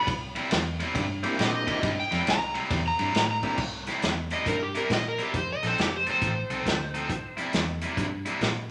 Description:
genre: electric blues shuffle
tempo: 137 BPM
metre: 4/4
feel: swing 64% on 8ths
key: C mixolydian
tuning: A4 = 439 Hz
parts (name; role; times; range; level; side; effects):
- overdriven slide guitar; melody; 0.0-7.4 s; G4 to Bb5; -31 LUFS; equal; none
- overdriven electric guitar; riff; 0.0-8.5 s; C3 to A4; -33 LUFS; equal; none
- vintage muted fingered electric bass; bass; 0.1-8.7 s; F1 to Bb2; -36 LUFS; equal; none
- swinging big-band drum kit; drums; 0.1-8.6 s; crash cymbal, hi-hat, kick drum, ride cymbal, snare drum; -32 LUFS; equal; none
- percussive tonewheel organ; accompaniment; 1.2-3.6 s; Bb3 to G4; -36 LUFS; equal; overdrive, chorus vibrato, slow rotary speaker
room: moderate large studio reverb, RT60 1.2 s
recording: none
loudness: -27 LUFS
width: mono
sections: 0.0-3.6 A section; 3.6-8.7 B section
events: electric slide guitar solo 0.0-3.6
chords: 0.1 C7; 5.3 F7; 7.1 C7

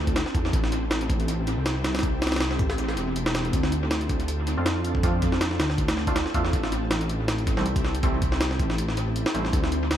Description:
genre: drum and bass, jungle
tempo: 160 BPM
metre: 4/4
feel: swing 54% on 16ths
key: unclear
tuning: A4 = 440 Hz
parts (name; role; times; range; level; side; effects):
- ethereal airy pad; sustained chords; 0.0-10.0 s; C4 to A4; -32 LUFS; left 2 dB; ensemble chorus, built-in reverb
- dark detuned saw bass; bass; 0.0-10.0 s; E1 to F2; -27 LUFS; equal; none
- jungle sampler-style drum kit; drums; 0.1-10.0 s; hi-hat, kick drum, snare drum; -25 LUFS; equal; dub echo
- orchestra-hit-like synth stab; stabs; 4.6-9.5 s; E3 to F4; -32 LUFS; right 2 dB; built-in reverb, cassette tape, dub echo
room: little or no reverb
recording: echo-heavy mix, vinyl crackle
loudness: -22 LUFS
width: side -10 dB against mid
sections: 0.0-10.0 A section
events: none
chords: 0.0 Dm7; 0.5 Am7; 3.5 Dm7; 6.5 Am7

